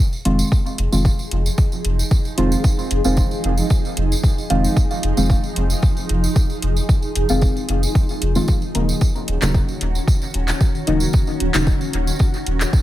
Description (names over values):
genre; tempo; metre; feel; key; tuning
dub techno; 113 BPM; 4/4; swing 53% on 16ths; F phrygian; A4 = 440 Hz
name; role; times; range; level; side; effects
granular cloud pad; sustained chords; 0.8-12.8 s; Eb3 to Ab4; -26 LUFS; right 1 dB; built-in reverb, sidechain pumping
tambourine; percussion; 0.1-12.8 s; none; -30 LUFS; right 3 dB; none
deep mellow chord stab; stabs; 0.3-12.8 s; Db3 to F4; -23 LUFS; equal; chorus, phaser, sidechain pumping, dub echo
soft dub sub bass; bass; 0.3-12.6 s; Eb1 to F1; -20 LUFS; equal; sidechain pumping
deep house drum kit; drums; 0.3-12.7 s; handclaps, hi-hat; -25 LUFS; equal; overdrive, dub echo
electronic kick drum; drums; 0.5-12.8 s; none; -17 LUFS; equal; overdrive
room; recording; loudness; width
little or no reverb; none; -16 LUFS; side -14 dB against mid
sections
0.0-12.8 A section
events
none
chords
0.0 Fm7; 8.5 Ebm7